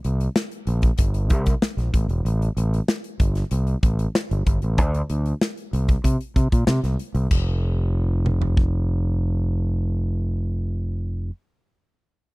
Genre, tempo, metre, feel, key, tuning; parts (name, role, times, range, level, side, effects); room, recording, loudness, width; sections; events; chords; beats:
polished 1980s jazz-funk pop; 95 BPM; 4/4; straight; A4 = 440 Hz
overdriven fingered electric bass; bass; 0.0-11.3 s; E1 to C3; -21 LUFS; equal
modern studio drum kit; drums; 0.0-8.7 s; crash cymbal, hi-hat, kick drum, snare drum, toms; -22 LUFS; equal
little or no reverb; dry, close 1970s-style studio recording; -20 LUFS; side -24 dB against mid
0.0-7.3 A section; 7.3-9.8 B section
0.37 1.00 1.63 | 2.26 2.89 3.52 4.16 | 4.79 5.42 6.05 6.68 | 7.31 7.94 8.57 9.21